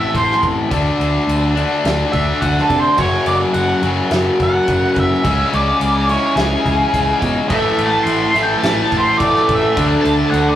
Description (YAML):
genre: quiet-loud alternative rock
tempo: 106 BPM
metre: 4/4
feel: straight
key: unclear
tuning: A4 = 440 Hz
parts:
  - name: octave-fuzz lead guitar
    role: melody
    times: 0.0-10.6 s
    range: G#4 to C6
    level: -18 LUFS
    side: right 1 dB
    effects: distortion
  - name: electric guitar at the edge of break-up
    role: arpeggios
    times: 0.0-7.5 s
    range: F#2 to F#4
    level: -29 LUFS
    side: right 2 dB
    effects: none
  - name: distorted electric guitar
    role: riff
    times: 0.0-10.6 s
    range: F#2 to D4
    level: -17 LUFS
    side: left 2 dB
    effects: overdrive
  - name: fingered electric bass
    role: bass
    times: 0.0-10.6 s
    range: F#1 to C3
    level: -22 LUFS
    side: right 1 dB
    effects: none
  - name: loose indie drum kit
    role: drums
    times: 0.1-10.5 s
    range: crash cymbal, kick drum, snare drum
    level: -22 LUFS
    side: equal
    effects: none
  - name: cranked stack guitar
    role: riff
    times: 7.5-10.6 s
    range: A2 to D4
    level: -19 LUFS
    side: right 3 dB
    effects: overdrive
room: wet studio reverb, RT60 0.6 s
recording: rough rehearsal-room recording, warm saturation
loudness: -13 LUFS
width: side -11 dB against mid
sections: 0.0-10.6 A section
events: lead electric guitar solo 0.0-10.6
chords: 0.0 Am; 0.7 D; 3.0 F#m; 5.2 C#m; 7.5 A5; 9.8 D5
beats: 0.14 | 0.71 1.28 1.84 2.41 | 2.98 3.54 4.11 4.67 | 5.24 5.81 6.37 6.94 | 7.51 8.07 8.64 9.20 | 9.77 10.34